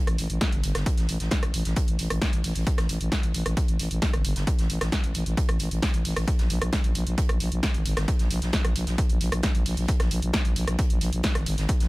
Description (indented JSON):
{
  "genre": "driving peak-time techno",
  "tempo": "133 BPM",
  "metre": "4/4",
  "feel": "straight",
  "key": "unclear",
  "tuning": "A4 = 441 Hz",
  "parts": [
    { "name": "growling FM bass", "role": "bass", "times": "0.1-11.9 s", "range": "G1 to A#1", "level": "-27 LUFS", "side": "equal", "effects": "sidechain pumping" },
    { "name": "punchy analog drum machine", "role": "drums", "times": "0.1-11.9 s", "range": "hi-hat, rim click, snare drum", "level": "-30 LUFS", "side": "equal", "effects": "overdrive" },
    { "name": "loose indie drum kit", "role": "drums", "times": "0.2-11.9 s", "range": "hi-hat, snare drum", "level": "-41 LUFS", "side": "right 2 dB", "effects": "sidechain pumping on hats, high-pass filter on hats, high-pass filter on snare, high-pass filter on room" },
    { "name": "electronic kick drum", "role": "drums", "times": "0.4-11.8 s", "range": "none", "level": "-25 LUFS", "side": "equal", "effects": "overdrive" }
  ],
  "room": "studio ambience",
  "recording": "none",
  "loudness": "-23 LUFS",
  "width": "side -21 dB against mid",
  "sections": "0.0-11.9 A section",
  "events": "none",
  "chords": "none"
}